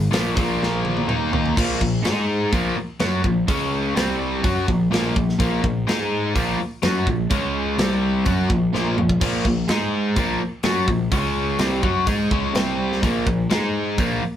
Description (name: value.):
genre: hard rock.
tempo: 126 BPM.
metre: 4/4.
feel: straight.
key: Bb minor.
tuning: A4 = 440 Hz.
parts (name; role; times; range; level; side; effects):
cranked stack guitar; riff; 0.0-14.3 s; Bb2 to Ab4; -23 LUFS; left 5 dB; overdrive.
overdriven electric guitar; riff; 0.0-14.3 s; Bb2 to Ab4; -24 LUFS; right 4 dB; phaser.
fuzz picked electric bass; bass; 0.0-14.3 s; Ab1 to Ab2; -27 LUFS; equal; overdrive.
tight metal drum kit; drums; 0.1-14.1 s; crash cymbal, hi-hat, kick drum, snare drum, toms; -24 LUFS; equal; none.
room: moderate small room reverb, RT60 0.5 s.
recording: band playing live in one room.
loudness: -18 LUFS.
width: side -10 dB against mid.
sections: 0.0-1.6 A section; 1.6-14.4 B section.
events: drum fill 0.6-1.6, 8.7-9.2.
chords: 0.4 Bb5; 1.1 Eb5; 1.6 Bb5; 2.0 Ab5; 2.5 Bbm; 3.5 Db5; 4.0 C5; 4.4 Bbm; 5.9 Ab5; 6.4 Bbm; 7.3 Db5; 7.8 C5; 8.3 Bbm; 9.7 Ab5; 10.2 Bbm; 11.1 Db5; 11.6 Abadd11/C; 12.5 C5; 13.0 Bb5; 13.5 Ab5.